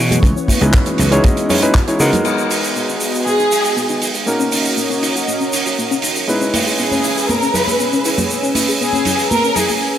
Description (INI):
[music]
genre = nu-disco, nu disco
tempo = 119 BPM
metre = 4/4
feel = straight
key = C# dorian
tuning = A4 = 440 Hz
[part]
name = lush unison pad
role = sustained chords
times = 0.0-10.0 s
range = E3 to E6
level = -22 LUFS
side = right 1 dB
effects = chorus, vintage 12-bit sampler grit, sidechain pumping
[part]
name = soft round pluck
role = arpeggios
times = 0.0-9.8 s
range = A#3 to B4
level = -24 LUFS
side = left 4 dB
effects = chorus, sidechain pumping, tape echo
[part]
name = gritty slap bass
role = bass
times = 0.0-2.1 s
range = C#2 to C#3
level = -15 LUFS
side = equal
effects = overdrive
[part]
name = damped 70s drum kit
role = drums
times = 0.0-9.8 s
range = crash cymbal, handclaps, hi-hat, shaker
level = -19 LUFS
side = right 3 dB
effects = studio reverb
[part]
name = congas and tambourine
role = percussion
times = 0.1-2.2, 6.3-9.8 s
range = none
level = -24 LUFS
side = right 1 dB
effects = none
[part]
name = kick drum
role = drums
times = 0.2-1.9 s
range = none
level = -13 LUFS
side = equal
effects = studio reverb
[part]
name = warm electric grand piano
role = accompaniment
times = 0.6-9.8 s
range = G#3 to C#5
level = -20 LUFS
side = left 1 dB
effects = vintage 12-bit sampler grit, sidechain pumping, tape echo
[part]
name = warm studio violin section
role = melody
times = 3.3-9.8 s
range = G#4 to B4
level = -18 LUFS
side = left 1 dB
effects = tape echo
[sound]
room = light reverb, small room ambience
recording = none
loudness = -13 LUFS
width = side -10 dB against mid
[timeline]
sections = 0.0-2.3 A section; 2.3-10.0 B section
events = filter sweep on synth arpeggio sound 2.3-10.0; break 9.8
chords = 0.0 C#m7; 2.3 G#m7; 4.3 D#m7; 6.3 C#m7